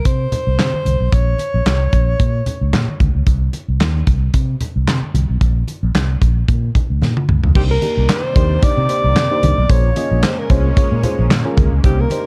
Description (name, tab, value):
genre	early-eighties boogie funk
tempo	112 BPM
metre	4/4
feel	swing 56% on 16ths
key	unclear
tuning	A4 = 440 Hz
part	breathy alto saxophone	melody	0.0-3.0, 7.6-12.3 s	G4 to D5	-23 LUFS	equal	tape echo
part	fingered electric bass	bass	0.1-12.0 s	Bb1 to C3	-19 LUFS	equal	none
part	modern studio drum kit	drums	0.1-12.2 s	crash cymbal, handclaps, hi-hat, kick drum, snare drum, toms	-19 LUFS	equal	none
part	congas	percussion	0.3-12.2 s	none	-26 LUFS	equal	none
part	mellow FM electric piano	accompaniment	7.6-12.3 s	Bb3 to Eb5	-26 LUFS	equal	chorus, phaser
part	lush unison pad	sustained chords	8.0-12.3 s	C3 to D5	-30 LUFS	equal	chorus, phaser
room	little or no reverb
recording	dark, warm production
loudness	-16 LUFS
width	mono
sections	0.0-7.6 A section; 7.6-12.3 B section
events	drum fill 7.0-7.6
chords	0.0 N.C.; 1.1 Bbm; 3.3 N.C.; 5.4 Bbm; 7.6 Cm9; 9.7 Bbm9